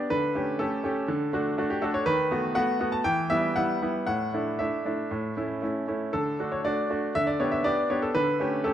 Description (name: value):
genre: classical-period piano sonatina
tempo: 120 BPM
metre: 4/4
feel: rubato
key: unclear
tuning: A4 = 440 Hz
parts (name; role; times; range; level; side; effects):
- bright baby grand piano; solo; 0.0-8.7 s; A2 to A5; -25 LUFS; equal; none
room: moderate recital hall reverb, RT60 1.6 s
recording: dark, warm production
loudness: -25 LUFS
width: side -10 dB against mid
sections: 0.0-8.7 A section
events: none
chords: 0.1 A7/D; 1.1 D; 2.1 B7/D#; 3.1 Em; 4.1 Asus4; 5.1 A; 6.1 D; 7.1 G/D; 8.1 A7/D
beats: | 0.11 0.60 1.09 1.58 | 2.07 2.56 3.05 3.56 | 4.07 4.59 5.11 5.62 | 6.13 6.65 7.15 7.64 | 8.14 8.64